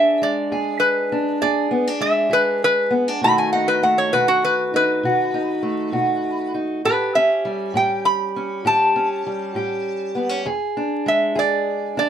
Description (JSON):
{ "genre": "acoustic country blues, solo or duo", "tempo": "66 BPM (dotted quarters)", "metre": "12/8", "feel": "straight", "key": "unclear", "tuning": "A4 = 440 Hz", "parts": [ { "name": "metal-body resonator slide guitar", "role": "melody", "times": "0.0-12.1 s", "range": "F#4 to B5", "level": "-18 LUFS", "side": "equal", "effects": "none" }, { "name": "fingerpicked steel-string acoustic guitar", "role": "accompaniment", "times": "0.0-12.1 s", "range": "E2 to G#4", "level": "-22 LUFS", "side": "equal", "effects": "none" } ], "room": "little or no reverb", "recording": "close, detailed microphones, vinyl crackle", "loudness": "-17 LUFS", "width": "side -9 dB against mid", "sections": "0.0-12.1 A section", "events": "none", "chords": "0.0 E7; 3.2 B7; 6.8 A7; 10.5 E7" }